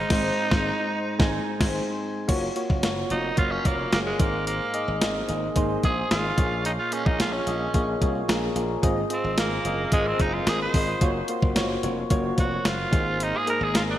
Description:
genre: 1980s-style pop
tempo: 110 BPM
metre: 4/4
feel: straight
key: unclear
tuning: A4 = 440 Hz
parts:
  - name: raspy tenor saxophone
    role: melody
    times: 0.0-14.0 s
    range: Ab3 to C5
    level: -28 LUFS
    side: right 2 dB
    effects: digital delay
  - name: soft electric-piano-like synth keys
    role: accompaniment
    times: 0.0-14.0 s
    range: Ab2 to Ab5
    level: -27 LUFS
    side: left 1 dB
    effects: chorus
  - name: slap bass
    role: bass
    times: 0.0-13.9 s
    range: F1 to C2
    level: -31 LUFS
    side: equal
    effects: none
  - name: clean 12-bit digital drum machine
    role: drums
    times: 0.1-13.9 s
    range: crash cymbal, hi-hat, kick drum, snare drum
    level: -25 LUFS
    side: equal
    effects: gated reverb
room: moderate lush hall reverb, RT60 2.0 s, digital ambience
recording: bright 1980s-style digital production, vinyl crackle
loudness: -22 LUFS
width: side -12 dB against mid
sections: 0.0-2.3 A section; 2.3-14.0 B section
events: band accent 0.1-2.3; tenor saxophone solo 2.3-14.0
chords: 0.0 Ab; 2.3 Gbmaj7; 4.2 Abadd9; 6.4 Bbm7; 8.8 Fm7; 11.0 Gbmaj7; 12.9 Abadd9

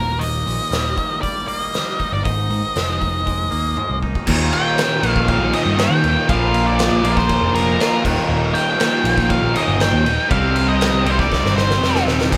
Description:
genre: quiet-loud alternative rock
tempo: 119 BPM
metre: 4/4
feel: straight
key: Eb major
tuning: A4 = 440 Hz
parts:
  - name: octave-fuzz lead guitar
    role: melody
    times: 0.0-12.0 s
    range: Bb4 to G5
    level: -24 LUFS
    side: equal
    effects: distortion
  - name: twangy electric guitar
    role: arpeggios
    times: 0.0-4.3 s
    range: Eb2 to Eb4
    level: -32 LUFS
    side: equal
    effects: none
  - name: picked electric bass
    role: bass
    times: 0.0-12.4 s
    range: Eb1 to Eb3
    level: -23 LUFS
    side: equal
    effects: none
  - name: oversized low-tuned drum kit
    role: drums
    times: 0.2-12.4 s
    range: crash cymbal, hi-hat, kick drum, ride cymbal, snare drum, toms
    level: -25 LUFS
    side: equal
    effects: none
  - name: distorted electric guitar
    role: riff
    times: 4.3-12.4 s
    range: Eb2 to G4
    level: -27 LUFS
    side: equal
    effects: overdrive
  - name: fuzz guitar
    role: riff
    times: 4.3-12.4 s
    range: Eb2 to C4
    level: -26 LUFS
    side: equal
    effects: distortion
  - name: raw garage guitar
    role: riff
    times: 4.3-12.4 s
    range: Eb2 to C4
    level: -25 LUFS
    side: equal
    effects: overdrive, phaser
room: light reverb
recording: band playing live in one room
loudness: -18 LUFS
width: mono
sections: 0.0-4.3 A section; 4.3-12.4 B section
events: drum fill 3.8-4.3, 11.3-12.3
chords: 0.0 Eb; 2.2 Absus2; 4.3 Eb; 6.3 Bb; 8.0 Eb; 10.3 Cm

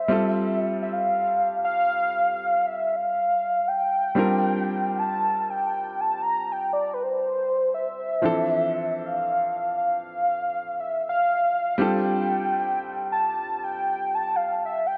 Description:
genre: R&B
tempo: 59 BPM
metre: 4/4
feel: swing 58% on 16ths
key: D minor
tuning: A4 = 439 Hz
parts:
  - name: warm velvety synth lead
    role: melody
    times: 0.0-15.0 s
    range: B4 to Bb5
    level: -26 LUFS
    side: equal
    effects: chorus, diffuse ambient delay
  - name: clear concert grand piano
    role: accompaniment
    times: 0.0-15.0 s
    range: E3 to Bb4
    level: -30 LUFS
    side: equal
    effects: none
room: wet lush hall reverb, RT60 3.0 s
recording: dreamy mix soaked in reverb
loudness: -25 LUFS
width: mono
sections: 0.0-15.0 A section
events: none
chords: 0.1 F; 4.2 Bb69; 8.2 Dm9; 11.8 G9sus4

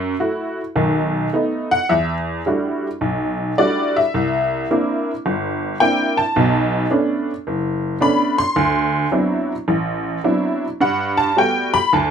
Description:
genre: solo jazz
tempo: 108 BPM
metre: 4/4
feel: swing 68% on 8ths, rubato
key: unclear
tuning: A4 = 441 Hz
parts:
  - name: honky-tonk upright piano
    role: solo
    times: 0.0-12.1 s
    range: F#1 to C6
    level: -17 LUFS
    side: equal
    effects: none
room: light reverb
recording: minimal, uncompressed stereo recording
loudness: -17 LUFS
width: side -7 dB against mid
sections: 0.0-1.9 A section; 1.9-12.1 A section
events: honky-tonk piano solo 0.0-12.1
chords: 0.0 F#m7; 0.8 B7; 1.9 Em11; 4.2 C9; 6.4 Bm9; 8.6 D13; 10.8 Gmaj9

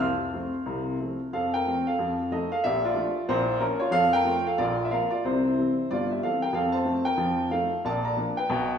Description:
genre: jazz, stride piano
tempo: 184 BPM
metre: 4/4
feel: swing 61% on 8ths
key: F major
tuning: A4 = 441 Hz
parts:
  - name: warm upright piano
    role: solo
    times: 0.0-8.8 s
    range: G1 to F6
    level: -24 LUFS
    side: equal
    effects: none
room: wet recital hall reverb, RT60 1.4 s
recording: recorded in a church or concert hall, studio reverb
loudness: -24 LUFS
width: side -8 dB against mid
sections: 0.0-1.3 A section; 1.3-8.8 A section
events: none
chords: 0.0 F; 2.0 F7; 2.6 Bbmaj7; 3.3 Bbm; 3.9 F; 4.6 Bb5; 5.2 C; 6.5 F; 7.2 F7; 7.8 Bb

